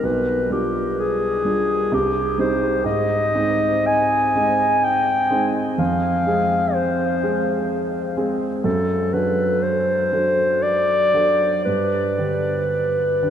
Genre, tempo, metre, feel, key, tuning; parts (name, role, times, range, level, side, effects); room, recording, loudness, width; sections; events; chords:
classical, romantic duo for clarinet and grand piano; 57-66 BPM; 3/4; rubato; A4 = 441 Hz
dark clarinet; melody; 0.0-13.3 s; G4 to Ab5; -19 LUFS; left 1 dB
warm grand piano; accompaniment; 0.0-13.3 s; B1 to A4; -23 LUFS; right 2 dB
wet huge ambient reverb, RT60 8.0 s; in a vast, echoing space; -17 LUFS; side -9 dB against mid
0.0-13.3 A section
0.0 G7/B; 1.9 Cm; 2.9 Ab; 5.8 Fm; 8.7 D7/F#; 11.7 G